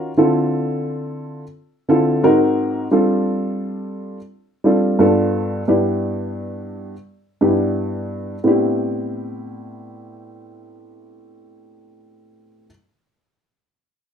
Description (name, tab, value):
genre	hip hop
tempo	87 BPM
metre	4/4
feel	swing 60% on 16ths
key	A minor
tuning	A4 = 441 Hz
part	dark upright piano	solo	0.0-12.7 s	G2 to A#4	-17 LUFS	equal	none
room	wet studio reverb, RT60 0.6 s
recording	rough home demo mix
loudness	-16 LUFS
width	side -8 dB against mid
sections	0.0-8.4 A section; 8.4-11.2 B section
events	none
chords	0.2 Dm9; 2.2 G#9; 2.9 G9sus4; 5.0 G9; 5.7 G6; 8.4 Am11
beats	| 0.17 0.86 1.55 2.24 | 2.92 3.62 4.30 4.99 | 5.68 6.37 7.06 7.75 | 8.44 9.13 9.82 10.51